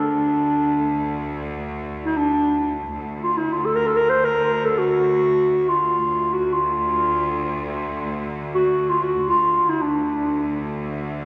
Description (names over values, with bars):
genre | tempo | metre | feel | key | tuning
Arabic maqam ensemble | free time | none | none | D maqam saba | A4 = 440 Hz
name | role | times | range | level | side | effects
dark clarinet | melody | 0.0-10.6 s | D4 to C5 | -22 LUFS | equal | none
bright studio cello section | drone | 0.0-11.2 s | D2 | -31 LUFS | equal | none
room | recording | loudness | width
wet church reverb, RT60 2.6 s | recorded in a church or concert hall | -21 LUFS | mono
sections
0.0-2.9 A section; 2.9-11.2 A section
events
none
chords
none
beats
free time